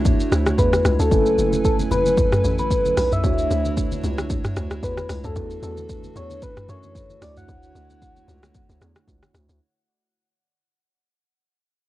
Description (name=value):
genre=amapiano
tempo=113 BPM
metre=4/4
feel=swing 55% on 16ths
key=unclear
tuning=A4 = 440 Hz
part: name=tine electric piano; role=accompaniment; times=0.0-9.6 s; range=A3 to G#5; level=-28 LUFS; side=right 8 dB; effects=medium tremolo
part: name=hollow soft pad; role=sustained chords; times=0.0-9.6 s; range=D3 to G#5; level=-31 LUFS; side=equal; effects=chorus
part: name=hollow log drum bass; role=bass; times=0.0-9.6 s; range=F#1 to F#2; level=-25 LUFS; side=equal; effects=none
part: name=deep house drum kit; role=drums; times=0.1-9.6 s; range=hi-hat, kick drum, rim click, shaker, toms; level=-23 LUFS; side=equal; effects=cassette tape
part: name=congas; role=percussion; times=0.1-9.5 s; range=none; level=-32 LUFS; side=left 4 dB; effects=none
part: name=soft struck synth lead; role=melody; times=0.6-9.1 s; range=A4 to F#5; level=-23 LUFS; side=left 1 dB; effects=chorus, cassette tape, tape echo
room=light reverb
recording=home recording on cassette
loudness=-18 LUFS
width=side -16 dB against mid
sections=0.0-9.6 A section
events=drop 0.0-9.6; fade-out 0.0-9.6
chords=0.0 Bm11/C#; 1.1 F#m11; 3.2 Dmaj9; 5.4 E9sus4; 7.2 Dmaj9